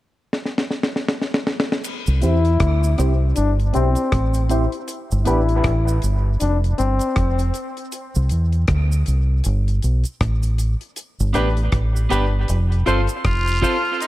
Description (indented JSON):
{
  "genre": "dub reggae",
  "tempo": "79 BPM",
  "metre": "4/4",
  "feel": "swing 60% on 16ths",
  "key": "C major",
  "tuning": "A4 = 440 Hz",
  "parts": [
    { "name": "deep reggae drum kit", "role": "drums", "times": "0.3-14.1 s", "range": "crash cymbal, hi-hat, kick drum, rim click, snare drum", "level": "-23 LUFS", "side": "equal", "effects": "none" },
    { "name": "cabasa and guiro", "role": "percussion", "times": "1.8-14.1 s", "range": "none", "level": "-36 LUFS", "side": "right 6 dB", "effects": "dub echo" },
    { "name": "deep dub fingered electric bass", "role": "bass", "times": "2.1-13.6 s", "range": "F1 to E2", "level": "-18 LUFS", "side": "equal", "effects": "none" },
    { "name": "warm trombone", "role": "second line", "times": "2.2-7.5 s", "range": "C4 to E4", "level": "-24 LUFS", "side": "left 4 dB", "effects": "dub echo" },
    { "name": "clean electric guitar", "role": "accompaniment", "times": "2.2-5.4, 11.3-13.8 s", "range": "B3 to C5", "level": "-27 LUFS", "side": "right 6 dB", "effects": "low-pass filter, dub echo" },
    { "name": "bright upright piano", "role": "stabs", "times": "2.2-5.4, 11.3-13.8 s", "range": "D4 to C5", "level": "-26 LUFS", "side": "left 4 dB", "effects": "low-pass filter, dub echo" },
    { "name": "edgy tenor saxophone", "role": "melody", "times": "13.3-14.1 s", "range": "E4 to F4", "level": "-21 LUFS", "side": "equal", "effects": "dub echo" }
  ],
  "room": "studio reverb",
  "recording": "echo-heavy mix",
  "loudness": "-17 LUFS",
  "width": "side -16 dB against mid",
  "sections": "0.0-1.8 A section; 1.8-14.0 B section",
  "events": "drum fill 0.3-1.8; filter sweep 1.8-14.0",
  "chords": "0.0 N.C.; 1.8 C; 4.9 G; 6.4 F5; 7.9 C; 11.0 G; 12.5 F"
}